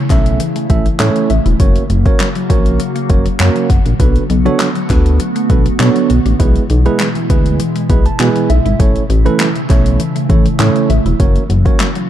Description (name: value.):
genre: dance-pop.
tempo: 100 BPM.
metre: 4/4.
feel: straight.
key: B minor.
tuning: A4 = 439 Hz.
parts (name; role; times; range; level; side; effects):
glassy FM pad; sustained chords; 0.0-12.1 s; B2 to F#4; -19 LUFS; right 2 dB; ensemble chorus, built-in reverb, sidechain pumping.
mallet-like synth pluck; arpeggios; 0.0-12.0 s; E3 to F#5; -24 LUFS; left 8 dB; chorus, sidechain pumping, ping-pong delay.
tine electric piano; accompaniment; 0.1-11.9 s; G#3 to B5; -18 LUFS; right 6 dB; sidechain pumping.
chorused synth bass; bass; 0.1-11.7 s; E1 to B2; -13 LUFS; equal; sidechain pumping.
deep house drum kit; drums; 0.1-12.1 s; handclaps, hi-hat, kick drum, snare drum; -14 LUFS; left 1 dB; overdrive.
group handclap; percussion; 0.1-11.9 s; none; -32 LUFS; left 4 dB; none.
room: digital ambience.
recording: dark, warm production.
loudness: -10 LUFS.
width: side -11 dB against mid.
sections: 0.0-12.1 A section.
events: tine electric piano fill 7.6-8.8.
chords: 0.0 A; 1.6 F#; 4.0 Bm7; 6.4 E/B; 8.8 A; 11.2 F#.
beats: 0.40 1.00 | 1.60 2.20 2.80 3.40 | 4.00 4.60 5.20 5.80 | 6.40 7.00 7.60 8.20 | 8.80 9.40 10.00 10.60 | 11.20 11.80.